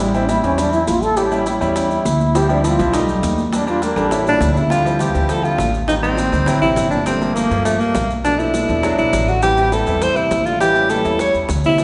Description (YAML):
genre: Afro-Cuban jazz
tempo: 204 BPM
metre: 4/4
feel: straight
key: unclear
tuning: A4 = 438 Hz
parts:
  - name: breathy trombone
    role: second line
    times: 0.0-11.8 s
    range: F2 to Bb4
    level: -25 LUFS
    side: equal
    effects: none
  - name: warm grand piano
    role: accompaniment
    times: 0.0-11.8 s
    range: Eb3 to G4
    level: -24 LUFS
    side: equal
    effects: none
  - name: upright bass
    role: bass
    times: 0.0-11.8 s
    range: G1 to G2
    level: -24 LUFS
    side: equal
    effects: none
  - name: congas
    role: percussion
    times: 0.1-11.8 s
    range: none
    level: -30 LUFS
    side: equal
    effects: none
  - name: maracas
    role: percussion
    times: 0.1-11.8 s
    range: none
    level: -36 LUFS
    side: equal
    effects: none
  - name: bongos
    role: percussion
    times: 0.3-11.8 s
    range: none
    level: -32 LUFS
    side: equal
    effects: none
  - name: clear alto saxophone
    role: melody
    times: 4.3-11.8 s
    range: A3 to C#5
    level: -20 LUFS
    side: equal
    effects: none
room: wet recital hall reverb, RT60 1.6 s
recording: recorded in a church or concert hall, nothing above 10.7 kHz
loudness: -17 LUFS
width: mono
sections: 0.0-4.7 A section; 4.7-11.8 B section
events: trombone solo 0.0-4.7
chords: 0.0 Am7; 1.2 A7; 2.4 Dm11; 2.9 B7b13; 3.5 Em7b5; 4.1 A7; 4.7 Dm11; 5.9 Am7b5; 6.5 D7; 7.1 Gm7; 8.2 Bm7b5; 8.8 E7; 9.4 Am7; 10.6 A7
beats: | 0.00 0.29 0.58 0.88 | 1.17 1.47 1.76 2.06 | 2.35 2.65 2.94 3.23 | 3.53 3.82 4.12 4.41 | 4.71 5.00 5.29 5.59 | 5.88 6.18 6.47 6.77 | 7.07 7.36 7.66 7.95 | 8.24 8.54 8.84 9.13 | 9.43 9.72 10.02 10.31 | 10.61 10.90 11.20 11.49 | 11.79